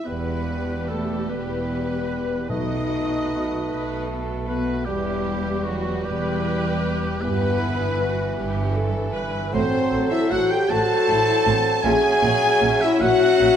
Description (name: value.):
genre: classical.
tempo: 51 BPM (dotted quarters).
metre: 6/8.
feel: rubato.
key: E minor.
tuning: A4 = 440 Hz.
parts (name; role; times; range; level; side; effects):
rich symphonic violin section; melody; 0.0-13.6 s; F#4 to A5; -32 LUFS; left 4 dB; none.
warm clarinet; second line; 0.0-13.6 s; F#4 to A5; -31 LUFS; left 1 dB; none.
warm oboe; second line; 0.0-13.6 s; F#4 to A5; -31 LUFS; right 2 dB; none.
warm symphonic violin section; second line; 0.0-13.6 s; F#4 to A5; -32 LUFS; equal; none.
mellow French horn section; sustained chords; 0.0-13.6 s; F#3 to A4; -23 LUFS; left 3 dB; none.
silver concert flute; second line; 0.1-13.6 s; B4 to E5; -33 LUFS; equal; none.
mellow bassoon; accompaniment; 0.1-13.6 s; E3 to A3; -30 LUFS; right 3 dB; none.
warm studio viola section; accompaniment; 0.1-13.6 s; C4 to B4; -31 LUFS; right 1 dB; none.
rich symphonic cello section; bass; 0.1-13.5 s; E2 to B2; -30 LUFS; right 3 dB; none.
rich symphonic double bass section; bass; 0.1-13.5 s; E1 to B1; -30 LUFS; right 3 dB; none.
timpani; percussion; 2.5-3.7 s; B2; -32 LUFS; right 2 dB; none.
room: wet scoring stage reverb, RT60 1.6 s.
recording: none.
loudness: -20 LUFS.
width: side -8 dB against mid.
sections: 0.1-13.6 A section.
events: none.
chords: 0.1 Em; 2.5 B7; 4.9 Em; 7.2 Em/G; 9.5 F#dim/A; 11.8 F#7/A#.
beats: | 0.06 1.29 | 2.50 3.69 | 4.87 6.05 | 7.22 8.38 | 9.54 10.69 | 11.84 13.01.